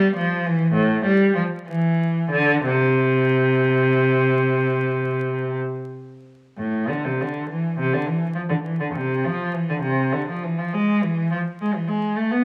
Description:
classical, baroque-style suite movement for unaccompanied cello; 58-70 BPM (dotted quarters); 12/8; rubato; C major; A4 = 440 Hz
rich cello; solo; 0.0-12.4 s; A2 to B3; -21 LUFS; equal
wet stone room reverb, RT60 1.2 s; vinyl crackle; -21 LUFS; mono
0.0-6.6 A section; 6.6-12.4 A section

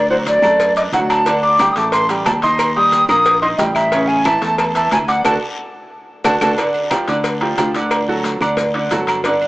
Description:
latin, salsa; 180 BPM; 4/4; straight; A4 = 441 Hz
breathy mellow silver concert flute; melody; 0.0-6.5 s; C5 to Eb6; -15 LUFS; equal; slapback echo
bright concert grand piano; accompaniment; 0.0-9.5 s; C#3 to Eb6; -19 LUFS; right 1 dB
fingered electric bass; bass; 0.0-9.5 s; G1 to F#2; -25 LUFS; equal
congas; percussion; 0.1-9.5 s; -29 LUFS; equal
cowbell; percussion; 0.3-9.4 s; -24 LUFS; left 2 dB
guiro; percussion; 0.3-9.5 s; -34 LUFS; left 3 dB
maracas; percussion; 0.3-9.4 s; -38 LUFS; left 5 dB
timbales and agogo bells; percussion; 0.3-9.5 s; -23 LUFS; right 1 dB
claves; percussion; 0.4-9.2 s; -28 LUFS; left 3 dB
moderate plate reverb, RT60 3.6 s; small speaker sound; -13 LUFS; side -19 dB against mid
0.0-6.6 A section; 6.6-9.5 B section
drum fill 5.3-6.6; band accent 5.3-6.6
0.0 D; 1.3 Dsus4; 2.6 Eb; 3.9 A; 5.3 D; 6.6 G5; 7.9 D

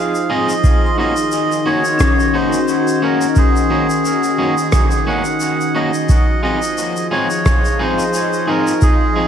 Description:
ambient dub; 88 BPM; 4/4; swing 56% on 16ths; Eb dorian; A4 = 440 Hz
melodica; melody; 0.0-9.3 s; Ab4 to Gb5; -19 LUFS; right 2 dB; dub echo
warbly tape-like pad; sustained chords; 0.0-9.3 s; Eb3 to F5; -21 LUFS; equal; chorus, built-in reverb
vibraphone with medium hard mallets; arpeggios; 0.0-9.3 s; Db4 to C6; -21 LUFS; left 6 dB; dub echo
shaker and rim click; drums; 0.1-9.0 s; -26 LUFS; left 2 dB; dub echo
electric guitar at the edge of break-up; stabs; 0.3-9.3 s; Bb3 to Ab4; -22 LUFS; right 2 dB; dub echo
electronic kick drum; drums; 0.6-9.0 s; -14 LUFS; equal; overdrive
light reverb; -13 LUFS; side -8 dB against mid
0.0-9.3 A section
0.0 Fm7; 0.6 Ebm7; 6.1 Fm7

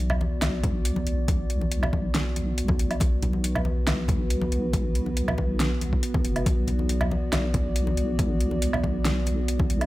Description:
deep dubstep; 139 BPM; 4/4; half-time; B minor; A4 = 438 Hz
dark analog pad; sustained chords; 0.0-9.9 s; B3 to D5; -31 LUFS; equal; chorus
deep soft wobble bass; bass; 0.0-9.9 s; F#1 to B1; -26 LUFS; equal; chorus
deep house drum kit; drums; 0.1-9.9 s; hi-hat, snare drum, woodblock; -29 LUFS; right 1 dB; overdrive, studio reverb
congas; percussion; 0.1-9.7 s; -33 LUFS; left 2 dB
electronic kick drum; drums; 0.6-9.7 s; -26 LUFS; equal; overdrive, studio reverb
little or no reverb; -23 LUFS; side -17 dB against mid
0.0-9.9 A section
0.0 Bm

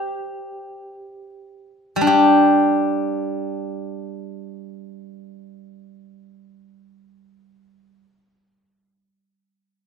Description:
chinese traditional, Chinese solo plucked strings; free time; A4 = 439 Hz
steel-string zither; solo; 0.0-8.0 s; G3 to C5; -19 LUFS; equal
light reverb; minimal, uncompressed stereo recording; -16 LUFS; side -6 dB against mid
0.0-2.1 A section; 2.1-7.1 B section
slowing down 0.0-2.1

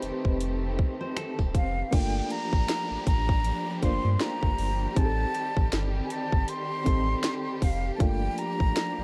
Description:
contemporary R&B; 79 BPM; 4/4; swing 58% on 16ths; G minor; A4 = 440 Hz
soft electric-piano-like synth keys; accompaniment; 0.0-9.0 s; A3 to C5; -36 LUFS; equal; chorus, tremolo
warm symphonic string section; sustained chords; 0.0-9.0 s; Eb3 to G4; -39 LUFS; equal; sidechain pumping
warm sub bass; bass; 0.0-9.0 s; Eb1 to G2; -32 LUFS; equal
trap drum kit; drums; 0.0-9.0 s; crash cymbal, finger snaps, hi-hat, kick drum, snare drum; -29 LUFS; equal
swell and downlifter; sound effects; 1.3-8.0 s; -48 LUFS; equal
nylon-string guitar; arpeggios; 1.0-1.9 s; G4 to C5; -41 LUFS; equal; tape echo
breathy concert flute; melody; 1.6-9.0 s; F5 to C6; -34 LUFS; equal
little or no reverb; worn, warbling old tape, cassette tape, warbly pitch drift; -27 LUFS; mono
0.0-1.9 A section; 1.9-9.0 B section
0.0 Am7b5; 1.9 Gm9; 5.0 Am7b5; 8.0 Gm9

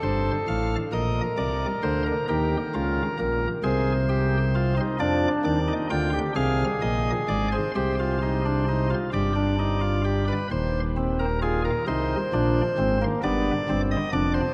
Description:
classical, baroque-style 3-part fugue for pipe organ; 44 BPM (dotted quarters); 6/8; straight; C minor from 5.0 s; A4 = 441 Hz
chamber organ, cornet; solo; 0.0-14.5 s; Eb1 to G5; -25 LUFS; equal
wet cathedral reverb, RT60 7.0 s; in a vast, echoing space; -25 LUFS; mono
0.0-10.5 A section; 10.5-14.5 B section
0.0 F; 0.9 Bb; 2.3 Eb7; 3.6 Ab/C; 5.0 Ddim; 7.7 Gsus4/C; 9.1 G; 10.5 Cm/Eb; 11.9 Cm; 13.2 G7

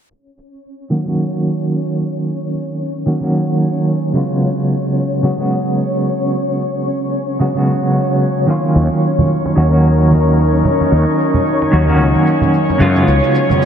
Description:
organic downtempo; 111 BPM; 4/4; swing 57% on 16ths; A4 = 439 Hz
cabasa; drums; 0.1-13.7 s; -52 LUFS; left 1 dB
twinkling granular texture; texture; 0.7-13.7 s; Db4 to Db5; -21 LUFS; left 1 dB; built-in reverb
clean electric guitar; accompaniment; 0.9-13.7 s; Db3 to Gb4; -16 LUFS; right 1 dB; tremolo, digital delay
airy breathy pad; sustained chords; 8.8-13.7 s; Gb3 to Bb4; -18 LUFS; left 2 dB; chorus
fretless electric bass; bass; 8.8-13.2 s; Db2 to Gb2; -13 LUFS; equal
congas; percussion; 9.2-13.6 s; -19 LUFS; right 2 dB
riser; sound effects; 13.3-13.7 s; -22 LUFS; right 2 dB
light reverb, digital ambience; low-pass filter; -13 LUFS; side -8 dB against mid
0.1-13.7 A section
filter sweep 0.1-13.7
0.1 Db7sus4

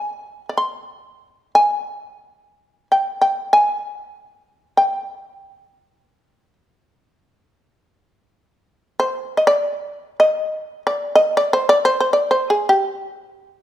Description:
japanese traditional, Japanese chamber music; free time; G miyako bushi; A4 = 440 Hz
shamisen; solo; 0.0-13.6 s; G4 to C6; -16 LUFS; equal
moderate recital hall reverb, RT60 1.5 s; minimal, uncompressed stereo recording; -16 LUFS; side -12 dB against mid
0.0-13.6 A section
slowing down 8.7-13.6

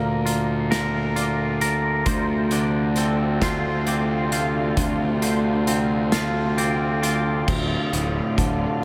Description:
post-rock; 44 BPM (dotted quarters); 6/8; straight; D minor; A4 = 440 Hz
twangy electric guitar; arpeggios; 0.0-8.8 s; D2 to Bb4; -27 LUFS; equal; analog delay
twangy electric guitar; arpeggios; 0.0-7.5 s; A4 to D5; -36 LUFS; equal; ensemble chorus, analog delay
fuzz picked electric bass; bass; 0.0-8.7 s; D1 to D2; -26 LUFS; equal; overdrive
loose indie drum kit; drums; 0.3-8.6 s; crash cymbal, hi-hat, kick drum, snare drum; -29 LUFS; equal
muted studio string section; sustained chords; 2.1-8.8 s; C3 to F4; -32 LUFS; equal
moderate huge ambient reverb, RT60 8.2 s; dreamy mix soaked in reverb; -22 LUFS; mono
0.0-7.5 A section; 7.5-8.8 B section
0.0 Bb/D; 2.1 Dm7

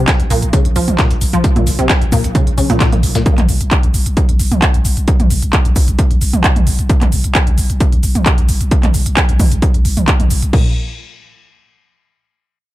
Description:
driving peak-time techno; 132 BPM; 4/4; straight; A4 = 440 Hz
resonant blip pluck; riff; 0.0-3.2, 10.5-10.7 s; Bb2 to F3; -18 LUFS; left 1 dB; chorus, overdrive, sidechain pumping, digital delay
growling 808-style bass; bass; 0.0-10.7 s; Bb1 to Cb2; -17 LUFS; equal; tube saturation, sidechain pumping, low-pass filter
dusty soul sampler-style drum kit; drums; 0.1-3.3 s; hi-hat, snare drum, tambourine; -29 LUFS; left 2 dB; overdrive, sidechain pumping on perc, high-pass filter on perc, high-pass filter on snare, sidechain pumping on hats, high-pass filter on hats
electronic kick drum; drums; 0.1-10.6 s; -13 LUFS; equal
techno drum kit; drums; 0.1-10.6 s; crash cymbal, handclaps, hi-hat, shaker, toms; -18 LUFS; right 1 dB
little or no reverb; dark, warm production; -11 LUFS; side -16 dB against mid
0.0-10.5 A section; 10.5-12.3 B section

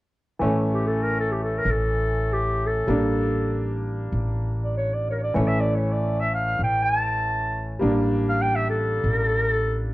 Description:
klezmer; free time; A4 = 440 Hz
clear upright piano; accompaniment; 0.4-9.9 s; E3 to D4; -26 LUFS; equal
upright bass; bass; 0.4-9.9 s; A1; -26 LUFS; equal
clear clarinet; melody; 0.7-9.9 s; G4 to A5; -24 LUFS; equal; plate reverb
moderate studio reverb, RT60 0.6 s; worn, warbling old tape, cassette tape, warbly pitch drift; -21 LUFS; side -18 dB against mid
0.4-9.9 A section
0.4 A; 2.9 Gm/A; 5.4 A; 7.8 Gm/A

